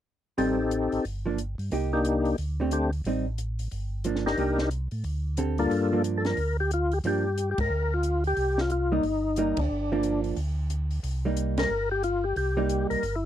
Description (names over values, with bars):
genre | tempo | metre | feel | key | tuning
soul jazz organ trio | 180 BPM | 4/4 | swing 62% on 8ths | G minor | A4 = 440 Hz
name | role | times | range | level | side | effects
overdriven tonewheel organ | melody | 0.4-13.2 s | G2 to Bb4 | -26 LUFS | left 2 dB | chorus vibrato, slow rotary speaker
hollow-body jazz guitar | accompaniment | 0.4-13.0 s | D3 to A4 | -28 LUFS | right 5 dB | none
mellow tonewheel organ | bass | 0.4-13.3 s | G1 to A2 | -29 LUFS | equal | slow rotary speaker
compact cocktail drum kit | drums | 0.4-13.1 s | hi-hat, kick drum, ride cymbal, snare drum | -36 LUFS | equal | none
room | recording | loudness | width
little or no reverb | dry, close 1970s-style studio recording | -25 LUFS | side -11 dB against mid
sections
0.4-5.7 A section; 5.7-13.3 B section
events
band accent 7.5, 9.5, 11.5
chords
0.4 Am7b5; 1.1 Gm7; 1.7 Cm7; 2.4 D7sus4; 3.1 Am7b5; 3.7 Gm7; 4.4 Cm7; 5.0 D7sus4; 5.7 Gm7; 8.4 Cm7; 9.7 Gm7; 11.0 Cm7